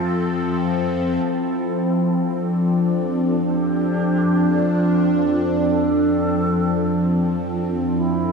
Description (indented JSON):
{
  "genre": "ambient",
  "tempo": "54 BPM",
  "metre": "3/4",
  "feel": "straight",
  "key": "F major",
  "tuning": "A4 = 442 Hz",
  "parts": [
    { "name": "reedy alto flute", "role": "melody", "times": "0.0-8.3 s", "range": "D4 to A4", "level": "-31 LUFS", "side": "equal", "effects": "ping-pong delay" },
    { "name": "evolving wavetable pad", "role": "sustained chords", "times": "0.0-8.3 s", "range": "F3 to E5", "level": "-18 LUFS", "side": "equal", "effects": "phaser, built-in reverb" },
    { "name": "dark studio cello section", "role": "bass", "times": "0.0-8.3 s", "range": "F2", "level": "-33 LUFS", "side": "equal", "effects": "none" }
  ],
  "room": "wet concert hall reverb, RT60 2.4 s",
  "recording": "dark, warm production",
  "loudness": "-18 LUFS",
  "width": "side -5 dB against mid",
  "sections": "0.0-1.3 A section; 1.3-8.3 B section",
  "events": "fade-in on cello section 1.3-8.3; fade-in on alto flute 1.3-8.3",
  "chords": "0.0 F; 1.3 F6"
}